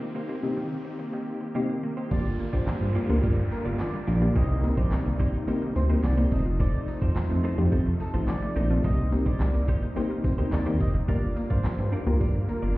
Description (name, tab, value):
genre	dance-pop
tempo	107 BPM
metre	4/4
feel	straight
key	G minor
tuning	A4 = 440 Hz
part	soft supersaw	sustained chords	0.0-12.8 s	C3 to G4	-34 LUFS	equal	sidechain pumping, low-pass filter
part	direct-recorded clean electric guitar	riff	0.0-12.8 s	Bb3 to D5	-36 LUFS	right 2 dB	wide subtle chorus, low-pass filter
part	riser and downlifter	sound effects	0.0-6.6 s	none	-46 LUFS	equal	none
part	wide unison pluck	arpeggios	0.1-12.7 s	C3 to F4	-37 LUFS	equal	sidechain pumping, low-pass filter, digital delay
part	soft round pluck	accompaniment	0.4-12.7 s	A3 to C5	-31 LUFS	left 2 dB	chorus, sidechain pumping, low-pass filter
part	expressive synth lead	melody	2.1-12.6 s	A4 to Eb5	-38 LUFS	right 1 dB	chorus, digital delay
part	chorused synth bass	bass	2.1-12.7 s	F1 to G2	-25 LUFS	equal	sidechain pumping
part	pop drum kit	drums	2.1-12.6 s	crash cymbal, handclaps, hi-hat, kick drum, snare drum	-27 LUFS	equal	none
part	tambourine	percussion	2.1-12.6 s	none	-67 LUFS	left 4 dB	none
room	light reverb, digital ambience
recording	heard muffled through a wall, stone room reverb, EQ, nothing above 8.0 kHz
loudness	-23 LUFS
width	side -18 dB against mid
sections	0.0-2.1 A section; 2.1-12.8 B section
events	break 0.0-2.1; build-up 0.0-2.1; riser 0.0-2.1; drop 2.1-12.8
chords	0.0 Cm7; 2.1 Gm7; 4.4 Cm7; 6.3 F7; 8.8 Cm7; 11.1 Gm7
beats	0.43 0.99 1.55 | 2.11 2.67 3.23 3.79 | 4.36 4.92 5.48 6.04 | 6.60 7.16 7.72 8.28 | 8.84 9.40 9.96 10.52 | 11.09 11.65 12.21 12.77